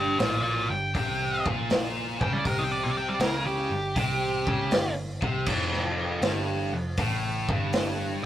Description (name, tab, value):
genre	blues rock power trio and southern rock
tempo	80 BPM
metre	4/4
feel	swing 68% on 8ths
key	unclear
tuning	A4 = 439 Hz
part	octave-fuzz lead guitar	melody	0.0-4.9 s	G4 to G5	-28 LUFS	equal	distortion
part	tight distorted guitar	riff	0.0-8.2 s	F2 to C#3	-30 LUFS	equal	distortion
part	vintage muted picked electric bass	bass	0.0-8.2 s	F1 to C#2	-33 LUFS	equal	none
part	raw garage drum kit	drums	0.2-8.0 s	crash cymbal, hi-hat, kick drum, snare drum	-29 LUFS	equal	none
room	wet booth ambience, RT60 0.2 s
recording	rough rehearsal-room recording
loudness	-24 LUFS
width	side -12 dB against mid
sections	0.0-8.3 A section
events	lead electric guitar solo 0.0-8.3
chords	0.0 N.C.; 5.5 F5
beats	0.20 0.95 1.71 | 2.46 3.21 3.97 4.72 | 5.48 6.23 6.99 7.74